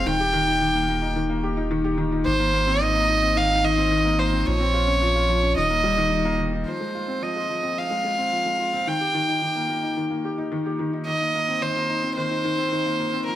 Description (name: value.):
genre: piano and strings electronica.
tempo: 109 BPM.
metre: 4/4.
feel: straight.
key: F minor.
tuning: A4 = 442 Hz.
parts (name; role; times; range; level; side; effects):
rich violin; melody; 0.0-13.4 s; Bb4 to G5; -23 LUFS; right 1 dB; none.
felt-muted upright piano; riff; 0.0-13.4 s; Eb3 to G4; -25 LUFS; left 2 dB; digital delay.
round analog bass; bass; 0.0-6.6 s; Eb1 to Bb1; -26 LUFS; right 1 dB; none.
room: moderate recital hall reverb, RT60 1.5 s, studio reverb.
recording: none.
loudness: -20 LUFS.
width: side -12 dB against mid.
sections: 0.0-6.7 A section; 6.7-13.4 B section.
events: none.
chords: 0.1 Eb; 2.3 Abadd9; 4.5 Bbmadd9; 5.6 Eb; 6.7 Fm; 8.9 Eb; 11.1 Cm7/Eb.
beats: | 0.06 0.61 1.17 1.72 | 2.27 2.82 3.37 3.92 | 4.47 5.02 5.57 6.12 | 6.67 7.22 7.77 8.32 | 8.87 9.42 9.97 10.52 | 11.07 11.62 12.17 12.72 | 13.28.